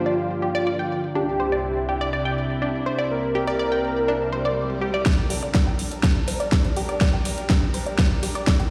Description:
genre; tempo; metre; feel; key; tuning
progressive house; 123 BPM; 4/4; straight; G dorian; A4 = 440 Hz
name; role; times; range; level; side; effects
unison lead; melody; 0.0-5.0 s; F4 to Bb4; -28 LUFS; equal; digital delay
lush unison pad; sustained chords; 0.0-8.7 s; C2 to Bb4; -31 LUFS; equal; chorus, sidechain pumping
analog pluck; arpeggios; 0.0-8.7 s; D4 to G5; -30 LUFS; equal; chorus, phaser, sidechain pumping, delay
swell; sound effects; 4.3-5.1 s; none; -36 LUFS; equal; none
big-room dance drum kit; drums; 5.1-8.7 s; hi-hat, snare drum; -28 LUFS; equal; none
electronic kick drum; drums; 5.1-8.6 s; none; -22 LUFS; equal; overdrive
fat analog bass; bass; 5.3-8.7 s; G1 to D2; -42 LUFS; equal; none
room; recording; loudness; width
moderate lush hall reverb, RT60 1.9 s, digital ambience; played on a big sound system in a bare room, stone room reverb; -23 LUFS; mono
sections
0.0-5.1 A section; 5.1-8.7 B section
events
swell 4.3-5.1; build-up 5.1-8.7; drum fill 5.1-8.7; filter sweep on synth arpeggio sound 5.1-8.7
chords
0.0 Gm; 1.2 Cadd9; 5.1 Gmadd9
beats
0.18 0.67 | 1.16 1.64 2.13 2.62 | 3.11 3.60 4.08 4.57 | 5.06 5.55 6.03 6.52 | 7.01 7.50 7.99 8.47

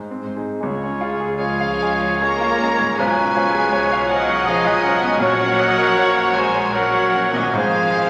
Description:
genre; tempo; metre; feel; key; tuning
classical; 70-82 BPM; 3/4; rubato; Db major; A4 = 440 Hz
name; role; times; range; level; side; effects
bright concert grand piano; melody; 0.0-8.1 s; Bb1 to Bb5; -24 LUFS; equal; none
clear chamber violin section; melody; 0.2-8.1 s; C5 to Bb5; -28 LUFS; equal; none
rich symphonic viola section; accompaniment; 0.2-8.1 s; Ab3 to Eb5; -29 LUFS; equal; none
clear symphonic cello section; bass; 0.2-8.1 s; Ab2 to Bb3; -31 LUFS; equal; none
rich studio violin section; second line; 0.3-8.1 s; Eb4 to Bb4; -35 LUFS; equal; none
rich symphonic double bass section; bass; 0.3-8.1 s; Ab1 to Db2; -37 LUFS; equal; none
warm clarinet; second line; 0.6-8.1 s; C5 to Db5; -34 LUFS; equal; none
mellow bassoon; accompaniment; 0.6-8.1 s; F3 to Ab3; -32 LUFS; equal; none
warm French horn section; sustained chords; 0.6-8.1 s; C4 to Ab4; -30 LUFS; equal; none
warm trombone section; sustained chords; 0.6-8.1 s; Bb2 to Bb3; -36 LUFS; equal; none
clear trumpet; stabs; 0.6-8.1 s; Ab4 to Db5; -26 LUFS; equal; none
flute section; second line; 1.4-8.1 s; Eb5 to Bb5; -30 LUFS; equal; none
warm oboe; second line; 1.4-8.1 s; Gb4 to Db5; -26 LUFS; equal; none
room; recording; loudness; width
wet scoring stage reverb, RT60 1.4 s; none; -18 LUFS; mono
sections
0.6-8.1 A section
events
none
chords
0.0 Ab; 0.6 Db; 3.0 Db7/Cb; 5.2 Gb/Bb; 7.5 Ab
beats
| 0.62 1.39 2.22 | 2.98 3.72 4.47 | 5.21 5.96 6.74 | 7.54

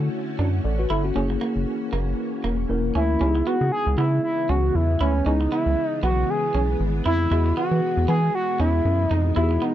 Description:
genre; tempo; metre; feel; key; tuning
funk; 117 BPM; 4/4; swing 56% on 16ths; C# minor from 3.2 s; A4 = 440 Hz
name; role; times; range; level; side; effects
mellow tine electric piano; accompaniment; 0.0-9.7 s; A3 to D#5; -30 LUFS; left 2 dB; medium stereo tremolo
soft string machine; sustained chords; 0.0-9.7 s; B2 to A#4; -31 LUFS; equal; ensemble chorus
rubbery square bass; bass; 0.0-9.6 s; E1 to E3; -22 LUFS; equal; none
electric guitar at the edge of break-up; riff; 0.4-9.7 s; A#3 to E4; -29 LUFS; right 5 dB; lush chorus
expressive synth lead; melody; 3.0-9.7 s; C#4 to G#4; -23 LUFS; equal; chorus
room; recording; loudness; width
little or no reverb; dry, close 1970s-style studio recording; -20 LUFS; side -12 dB against mid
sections
0.0-3.2 A section; 3.2-9.7 B section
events
none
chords
0.0 Dmaj7; 1.2 F#7; 3.2 C#m7; 7.3 Emaj7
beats
0.13 0.65 | 1.16 1.67 2.19 2.70 | 3.21 3.72 4.24 4.75 | 5.26 5.77 6.29 6.80 | 7.31 7.83 8.34 8.85 | 9.36

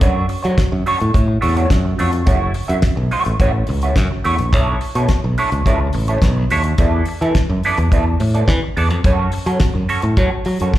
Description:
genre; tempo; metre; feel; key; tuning
disco; 106 BPM; 4/4; straight; unclear; A4 = 439 Hz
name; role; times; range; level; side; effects
semi-hollow electric guitar; accompaniment; 0.0-10.8 s; A3 to E5; -21 LUFS; right 2 dB; wah, slapback echo
modern bright fingered electric bass; bass; 0.0-10.7 s; F#1 to F#3; -17 LUFS; equal; none
damped 70s drum kit; drums; 0.0-10.8 s; hi-hat, kick drum, snare drum; -18 LUFS; equal; none
room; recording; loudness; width
small room ambience; live gig heard through the venue's PA, club reverb; -14 LUFS; side -14 dB against mid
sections
0.0-10.8 A section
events
none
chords
0.0 Dmaj7/F#; 2.3 F#m7; 4.5 Bm11; 6.8 E7sus4; 9.0 Dmaj7/F# (rootless)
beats
| 0.01 0.57 1.14 1.70 | 2.27 2.83 3.40 3.96 | 4.53 5.09 5.65 6.22 | 6.78 7.35 7.91 8.48 | 9.04 9.61 10.18 10.74

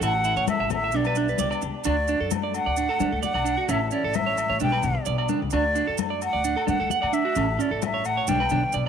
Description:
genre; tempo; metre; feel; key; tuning
highlife guitar band; 131 BPM; 4/4; straight; D major; A4 = 441 Hz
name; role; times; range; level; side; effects
bright silver concert flute; melody; 0.0-8.7 s; D5 to G5; -26 LUFS; equal; none
clean electric guitar; accompaniment; 0.0-8.9 s; G2 to A4; -34 LUFS; left 12 dB; none
electric guitar at the edge of break-up; arpeggios; 0.0-8.9 s; C#4 to F#5; -27 LUFS; right 11 dB; tape echo
upright bass; bass; 0.0-8.9 s; A1 to D3; -29 LUFS; left 1 dB; none
agogo bells; percussion; 0.0-8.5 s; none; -34 LUFS; left 16 dB; none
congas; percussion; 0.0-8.8 s; none; -31 LUFS; left 13 dB; none
maracas; percussion; 0.0-8.8 s; none; -36 LUFS; right 16 dB; none
room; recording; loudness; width
light reverb, studio ambience; 1960s-style stereo with parts hard left and right; -22 LUFS; side -7 dB against mid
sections
0.0-1.9 A section; 1.9-8.9 B section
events
none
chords
0.0 A; 0.9 G/B; 1.9 D; 3.7 A; 4.6 G/B; 5.5 D; 7.4 A; 8.3 G/B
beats
| 0.02 0.48 0.94 1.40 | 1.85 2.31 2.77 3.23 | 3.69 4.15 4.61 5.07 | 5.53 5.99 6.45 6.91 | 7.37 7.83 8.29 8.75

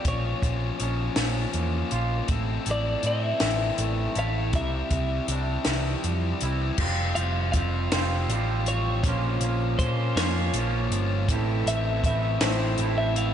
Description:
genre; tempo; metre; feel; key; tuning
indie rock; 53 BPM (dotted quarters); 6/8; straight; F major; A4 = 440 Hz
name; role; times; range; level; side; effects
twelve-string electric guitar; melody; 0.0-13.3 s; C5 to F5; -32 LUFS; left 1 dB; tape echo
electric guitar through a small old amp; riff; 0.0-13.3 s; A2 to F4; -32 LUFS; right 8 dB; lush chorus, slapback echo, tape echo
fuzz guitar; riff; 0.0-13.3 s; F3 to A4; -31 LUFS; left 8 dB; distortion
picked electric bass; bass; 0.0-13.3 s; F1 to Bb2; -27 LUFS; equal; none
compact cocktail drum kit; drums; 0.0-13.3 s; crash cymbal, hi-hat, kick drum, snare drum; -29 LUFS; equal; none
room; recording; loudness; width
moderate lush hall reverb, RT60 2.7 s; big arena sound, nothing above 10.4 kHz, faint mains hum; -23 LUFS; side -9 dB against mid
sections
0.0-6.8 A section; 6.8-13.3 B section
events
none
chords
0.1 Bbm; 2.3 Am; 4.5 Cadd9; 6.8 Fsus2; 9.0 Bbm; 11.3 Am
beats
| 0.05 1.18 | 2.30 3.42 | 4.55 5.67 | 6.80 7.92 | 9.04 10.17 | 11.29 12.41

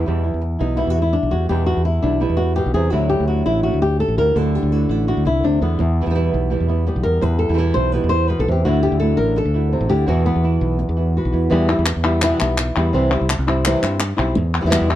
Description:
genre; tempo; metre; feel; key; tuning
flamenco; 168 BPM; 4/4; straight; E minor; A4 = 440 Hz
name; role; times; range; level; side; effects
flamenco guitar; melody; 0.0-15.0 s; E2 to C5; -19 LUFS; left 1 dB; none
flamenco guitar; stabs; 0.0-11.5 s; B2 to F#4; -25 LUFS; right 6 dB; none
fingered electric bass; bass; 0.0-15.0 s; A1 to G2; -19 LUFS; equal; none
palmas hand claps; percussion; 11.7-15.0 s; none; -23 LUFS; left 3 dB; none
room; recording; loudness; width
little or no reverb; dark, warm production; -16 LUFS; side -12 dB against mid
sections
0.1-11.5 A section; 11.5-15.0 B section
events
nylon-string guitar solo 0.1-11.5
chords
0.1 Em; 2.9 Dadd9; 5.8 Em; 8.7 Dadd9; 10.1 Esus2; 11.5 Em; 12.9 C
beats
| 0.07 0.43 0.79 1.15 | 1.50 1.86 2.22 2.58 | 2.93 3.29 3.65 4.01 | 4.36 4.72 5.08 5.44 | 5.79 6.15 6.51 6.87 | 7.23 7.58 7.94 8.30 | 8.66 9.01 9.37 9.73 | 10.09 10.44 10.80 11.16 | 11.51 11.87 12.23 12.58 | 12.94 13.30 13.65 14.01 | 14.37 14.72

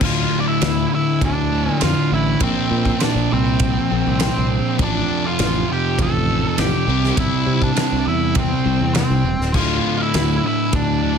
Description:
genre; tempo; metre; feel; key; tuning
quiet-loud alternative rock; 101 BPM; 4/4; straight; D minor; A4 = 439 Hz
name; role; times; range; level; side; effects
octave-fuzz lead guitar; melody; 0.0-11.2 s; C4 to A5; -23 LUFS; equal; distortion, slapback echo
sludgy distorted guitar; riff; 0.0-11.2 s; D2 to C4; -23 LUFS; left 9 dB; overdrive
sludgy distorted guitar; riff; 0.0-11.2 s; D2 to C4; -26 LUFS; equal; none
thick fuzz guitar; riff; 0.0-11.2 s; D2 to C4; -23 LUFS; right 11 dB; distortion
modern bright fingered electric bass; bass; 0.0-11.2 s; D1 to C3; -22 LUFS; equal; none
loose indie drum kit; drums; 0.0-10.9 s; crash cymbal, kick drum, ride cymbal, snare drum; -24 LUFS; equal; none
room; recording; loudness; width
little or no reverb; none; -16 LUFS; side -7 dB against mid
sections
0.0-11.2 A section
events
none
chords
0.0 Dmadd9; 2.4 Bbsus2; 4.8 F6/A; 6.9 C; 9.6 Dmadd9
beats
| 0.02 0.62 1.22 1.81 | 2.41 3.01 3.60 4.20 | 4.80 5.39 5.99 6.58 | 7.18 7.77 8.37 8.96 | 9.55 10.15 10.74

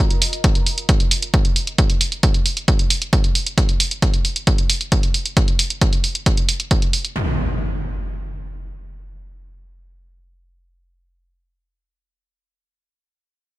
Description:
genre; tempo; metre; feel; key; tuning
driving peak-time techno; 134 BPM; 4/4; straight; none; none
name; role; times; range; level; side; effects
electronic hi-hat; drums; 0.1-7.1 s; none; -21 LUFS; right 2 dB; sidechain pumping on hats, sidechain pumping on toms
electronic kick drum; drums; 0.4-6.8 s; none; -17 LUFS; equal; none
impact; sound effects; 7.2-11.3 s; none; -24 LUFS; equal; none
room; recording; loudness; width
little or no reverb; bright 1980s-style digital production; -16 LUFS; side -19 dB against mid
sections
0.0-7.2 A section; 7.2-10.7 B section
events
none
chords
none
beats
0.44 0.89 1.34 | 1.78 2.23 2.68 3.13 | 3.58 4.02 4.47 4.92 | 5.37 5.81 6.26 6.71 | 7.16 7.61 8.05 8.50 | 8.95 9.40 9.84 10.29

